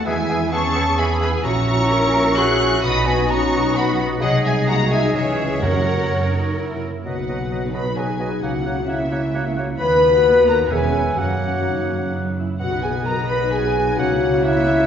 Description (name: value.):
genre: classical, dramatic, fast romantic movement for symphony orchestra.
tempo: 130 BPM.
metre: 3/4.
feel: straight.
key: B major.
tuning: A4 = 440 Hz.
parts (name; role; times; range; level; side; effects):
warm symphonic violin section; melody; 0.0-14.9 s; E5 to F#6; -28 LUFS; left 2 dB; none.
mellow small flute group; second line; 0.0-14.9 s; C#5 to C#6; -27 LUFS; right 1 dB; none.
warm symphonic violin section; second line; 0.0-14.9 s; C#5 to C#6; -31 LUFS; left 2 dB; none.
dark symphonic viola section; accompaniment; 0.0-14.9 s; A#3 to B4; -30 LUFS; right 2 dB; none.
dark French horn section; sustained chords; 0.0-14.9 s; E3 to B4; -22 LUFS; left 2 dB; none.
concert harp; arpeggios; 0.0-14.9 s; F#2 to B4; -26 LUFS; left 4 dB; none.
warm symphonic cello section; bass; 0.0-14.9 s; D#2 to A#4; -27 LUFS; right 2 dB; none.
warm symphonic double bass section; bass; 0.0-14.9 s; E1 to F#2; -26 LUFS; right 2 dB; none.
bright clarinet; second line; 0.1-14.9 s; F#4 to D#5; -30 LUFS; equal; none.
warm oboe; second line; 0.1-14.9 s; C#5 to F#5; -30 LUFS; right 2 dB; none.
warm bassoon; accompaniment; 0.1-14.9 s; F#3 to C#4; -29 LUFS; right 2 dB; none.
timpani; percussion; 5.6-6.3 s; F#2; -27 LUFS; right 2 dB; none.
room: wet scoring stage reverb, RT60 1.5 s.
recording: heard from further back in the room, nothing above 7.6 kHz.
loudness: -17 LUFS.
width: side -8 dB against mid.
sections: 0.0-7.1 A section; 7.1-14.9 B section.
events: none.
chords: 0.1 E; 1.4 F#7/A#; 2.8 B; 4.2 G#7/B#; 5.2 C#m; 5.6 F#; 7.1 B; 8.4 F#7/C#; 9.8 B/D#; 10.7 C#m7/E; 11.2 F#; 12.6 B; 14.0 F#7/C#.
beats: | 0.07 0.52 0.98 | 1.44 1.91 2.37 | 2.83 3.30 3.76 | 4.22 4.68 5.15 | 5.63 6.11 6.58 | 7.06 7.52 7.97 | 8.43 8.89 9.34 | 9.80 10.26 10.72 | 11.18 11.66 12.13 | 12.60 13.06 13.53 | 13.99 14.45.